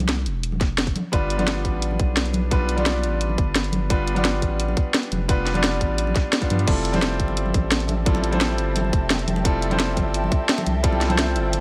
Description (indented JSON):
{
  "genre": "liquid drum and bass",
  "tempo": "173 BPM",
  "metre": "4/4",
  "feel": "straight",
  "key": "unclear",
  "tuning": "A4 = 440 Hz",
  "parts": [
    { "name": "saturated sub bass", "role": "bass", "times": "0.0-11.6 s", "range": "E1 to G2", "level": "-27 LUFS", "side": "equal", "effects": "none" },
    { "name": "drum and bass drum kit", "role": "drums", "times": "0.0-11.6 s", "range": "crash cymbal, hi-hat, snare drum", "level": "-27 LUFS", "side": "equal", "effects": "small room ambience" },
    { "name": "congas", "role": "percussion", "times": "0.0-11.6 s", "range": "none", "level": "-31 LUFS", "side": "equal", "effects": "none" },
    { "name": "electronic kick drum", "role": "drums", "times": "0.6-10.9 s", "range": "none", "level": "-24 LUFS", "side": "equal", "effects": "small room ambience" },
    { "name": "clear grand piano", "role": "accompaniment", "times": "1.1-11.6 s", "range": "G3 to D5", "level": "-28 LUFS", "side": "equal", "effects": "vintage 12-bit sampler grit, tape echo" },
    { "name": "ethereal airy pad", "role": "sustained chords", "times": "7.6-11.6 s", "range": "E5 to A5", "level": "-34 LUFS", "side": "equal", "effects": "ensemble chorus, built-in reverb, sidechain pumping" }
  ],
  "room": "light reverb, digital ambience",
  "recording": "none",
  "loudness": "-22 LUFS",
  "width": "mono",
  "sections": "0.0-11.6 A section",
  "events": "none",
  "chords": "0.0 Dm9 (rootless); 1.1 G7; 6.7 Fmaj9"
}